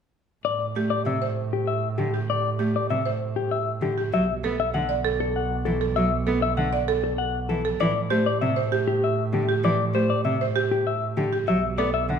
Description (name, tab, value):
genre	classical, minimalist pattern music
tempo	196 BPM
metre	6/4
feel	straight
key	A dorian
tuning	A4 = 439 Hz
part	clean electric guitar	melody	0.4-12.2 s	G4 to F#5	-26 LUFS	left 6 dB	none
part	rich double bass	bass	0.5-12.2 s	B1 to A2	-28 LUFS	right 3 dB	none
part	rich cello	accompaniment	0.8-12.2 s	C3 to B3	-27 LUFS	right 1 dB	none
part	buzzing marimba with medium hard mallets	arpeggios	0.8-12.0 s	G4 to D5	-29 LUFS	right 7 dB	none
room	wet recital hall reverb, RT60 1.3 s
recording	minimal, uncompressed stereo recording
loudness	-22 LUFS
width	side -7 dB against mid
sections	0.5-12.2 A section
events	none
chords	0.5 Am7; 4.1 Bm7; 7.8 Am7; 11.5 Bm7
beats	| 0.46 0.76 1.07 1.37 1.68 1.99 | 2.29 2.60 2.90 3.21 3.52 3.82 | 4.13 4.43 4.74 5.05 5.35 5.66 | 5.96 6.27 6.58 6.88 7.19 7.50 | 7.80 8.11 8.41 8.72 9.03 9.33 | 9.64 9.94 10.25 10.56 10.86 11.17 | 11.47 11.78 12.09